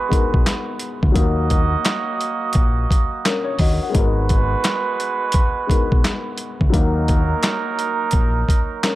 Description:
hip hop, boom-bap hip-hop; 86 BPM; 4/4; swing 62% on 16ths; G# minor; A4 = 440 Hz
dark baby grand piano; accompaniment; 0.0-9.0 s; F#3 to F#5; -25 LUFS; left 5 dB; high-pass filter, low-pass filter, analog delay
muted trumpet section; stabs; 0.0-9.0 s; F#3 to D#5; -24 LUFS; right 6 dB; high-pass filter, low-pass filter, analog delay
boom bap sampler-style drum kit; drums; 0.1-9.0 s; handclaps, hi-hat, kick drum, snare drum; -18 LUFS; equal
deep dub fingered electric bass; bass; 0.3-8.4 s; G#1 to D#2; -20 LUFS; equal
light reverb; echo-heavy mix; -16 LUFS; side -16 dB against mid
0.0-9.0 A section
0.0 G#m7; 1.2 D#m; 3.9 G#m7; 6.7 D#m
0.46 | 1.15 1.85 2.55 3.25 | 3.94 4.64 5.34 6.04 | 6.74 7.43 8.13 8.83

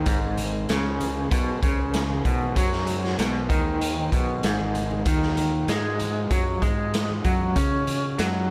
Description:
psychedelic rock; 96 BPM; 4/4; straight; Ab mixolydian; A4 = 440 Hz
overdriven combo organ; sustained chords; 0.0-8.5 s; Eb4 to C5; -40 LUFS; equal
electric guitar through a small old amp; riff; 0.0-8.5 s; Ab2 to Db4; -28 LUFS; equal; tremolo
fuzz fingered electric bass; bass; 0.0-8.5 s; Ab1 to Db3; -32 LUFS; equal; overdrive
raw garage drum kit; drums; 0.1-8.3 s; hi-hat, kick drum, snare drum; -28 LUFS; equal
congas; percussion; 0.1-8.0 s; barely audible
light reverb, small room ambience; -24 LUFS; mono
0.0-8.5 A section
drum fill 4.3-5.1
0.0 Abadd9; 5.1 Ebmadd9
| 0.07 0.69 1.32 1.94 | 2.57 3.19 3.81 4.44 | 5.06 5.69 6.31 6.94 | 7.56 8.19

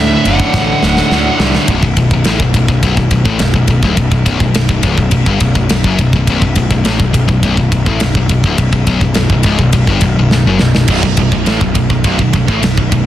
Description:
heavy metal; 104 BPM; 4/4; straight; A4 = 440 Hz
high-gain lead guitar; melody; 0.0-1.4 s; E5 to F#5; -19 LUFS; equal; distortion, digital delay
heavy high-gain guitar; riff; 0.0-1.7, 10.9-13.1 s; B1 to D3; -17 LUFS; right 11 dB; distortion
high-gain distorted guitar; riff; 0.0-13.1 s; B1 to D3; -14 LUFS; left 4 dB; distortion
fuzz picked electric bass; bass; 0.0-13.1 s; B0 to D2; -16 LUFS; right 1 dB; overdrive
tight metal drum kit; drums; 0.3-13.1 s; crash cymbal, kick drum, ride cymbal, snare drum; -14 LUFS; equal; soft clipping on kick
little or no reverb; dense, heavily limited modern master; -9 LUFS; side -12 dB against mid
0.0-1.7 A section; 1.7-13.1 B section
drum fill 0.5-1.7, 10.3-10.9
0.0 D; 1.7 N.C.
0.55 1.12 | 1.69 2.27 2.84 3.41 | 3.99 4.56 5.14 5.71 | 6.29 6.86 7.44 8.02 | 8.59 9.17 9.75 10.32 | 10.90 11.48 12.06 12.64

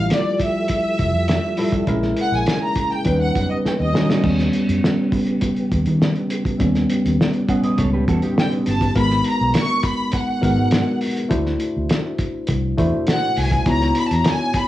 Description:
lush 1970s-style soul; 102 BPM; 4/4; straight; A4 = 441 Hz
rich studio violin section; melody; 0.0-4.2, 8.4-14.7 s; D5 to C#6; -23 LUFS; equal; cassette tape, plate reverb
tine electric piano; accompaniment; 0.0-14.7 s; G3 to C#5; -21 LUFS; left 1 dB; wide subtle chorus, cassette tape
mellow tonewheel organ; sustained chords; 0.0-8.9 s; C#3 to G#4; -29 LUFS; right 2 dB; chorus vibrato, slow rotary speaker, cassette tape
vintage muted fingered electric bass; bass; 0.0-14.2 s; F1 to D#3; -21 LUFS; equal
cloth-damped thuddy drum kit; drums; 0.1-14.7 s; crash cymbal, hi-hat, kick drum, snare drum; -22 LUFS; equal
electric guitar through a small old amp; riff; 7.5-8.9 s; D#4 to F#5; -28 LUFS; right 3 dB; cassette tape
moderate studio reverb, RT60 0.6 s; home recording on cassette, studio ambience; -17 LUFS; side -14 dB against mid
0.0-4.2 A section; 4.2-9.0 B section; 9.0-14.7 C section
violin section solo 0.0-4.2; drum fill 3.6-4.2; tine electric piano solo 4.2-9.0
0.0 Fmaj9; 1.9 A#m7b5; 3.1 D#7alt; 4.2 D#7b13; 9.0 G#m9; 11.3 D9; 13.7 C#m11
0.10 0.69 1.28 | 1.88 2.47 3.06 3.65 | 4.24 4.83 5.42 6.01 | 6.60 7.19 7.78 8.37 | 8.95 9.54 10.13 10.72 | 11.31 11.90 12.49 13.08 | 13.66 14.25

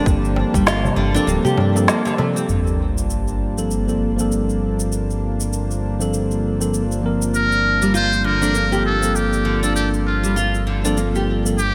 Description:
organic downtempo; 99 BPM; 4/4; swing 58% on 16ths; G minor; A4 = 438 Hz
tine electric piano; accompaniment; 0.0-11.6 s; F3 to Bb4; -26 LUFS; equal; sidechain pumping, digital delay
warm analog pad; sustained chords; 0.0-11.7 s; G3 to A5; -27 LUFS; equal; chorus, sidechain pumping
nylon-string guitar; arpeggios; 0.0-2.5, 7.8-11.7 s; D3 to G4; -26 LUFS; equal; analog chorus, digital delay
smooth synth bass; bass; 0.1-11.7 s; D1 to G2; -25 LUFS; equal; sidechain pumping
electronic cabasa and snare drum; drums; 0.1-11.7 s; -28 LUFS; equal; overdrive, gated reverb
electronic kick drum; drums; 0.1-0.6 s; -21 LUFS; equal; overdrive
darbuka; percussion; 0.4-2.3 s; -29 LUFS; equal
sub drop; sound effects; 2.5-4.9 s; -28 LUFS; equal
trumpet with metal mute; melody; 7.3-11.7 s; F4 to C5; -23 LUFS; equal; digital delay
moderate plate reverb, RT60 3.5 s; bright 1980s-style digital production; -19 LUFS; mono
0.0-2.5 A section; 2.5-11.7 B section
impact 2.5-4.9
0.0 Gm11
| 0.07 0.67 1.28 1.88 | 2.49 3.10 3.70 4.31 | 4.92 5.52 6.13 6.73 | 7.34 7.95 8.55 9.16 | 9.76 10.37 10.97 11.58

